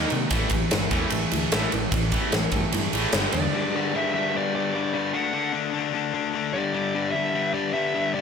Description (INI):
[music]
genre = hard rock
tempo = 150 BPM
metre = 4/4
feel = straight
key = unclear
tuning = A4 = 440 Hz
[part]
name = crunchy overdriven guitar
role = riff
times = 0.0-8.2 s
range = G2 to D#4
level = -26 LUFS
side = left 8 dB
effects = none
[part]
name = distorted electric guitar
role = riff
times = 0.0-3.5 s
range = G2 to D#4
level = -32 LUFS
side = right 2 dB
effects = overdrive
[part]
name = tight distorted guitar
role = riff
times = 0.0-3.5 s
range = G2 to D#4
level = -30 LUFS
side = right 13 dB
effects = distortion
[part]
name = picked electric bass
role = bass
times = 0.0-3.5 s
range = G1 to C3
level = -30 LUFS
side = right 1 dB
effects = none
[part]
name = huge arena drum kit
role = drums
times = 0.1-3.4 s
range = kick drum, ride cymbal, snare drum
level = -27 LUFS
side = right 1 dB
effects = none
[part]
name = dark smooth lead guitar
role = melody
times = 3.3-8.2 s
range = D5 to F#5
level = -27 LUFS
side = right 2 dB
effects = overdrive
[sound]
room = light reverb, small room ambience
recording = none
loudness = -22 LUFS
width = side -6 dB against mid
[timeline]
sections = 0.0-3.5 A section; 3.5-8.2 B section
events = none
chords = 0.3 A5; 3.1 G5; 5.1 D; 6.5 G5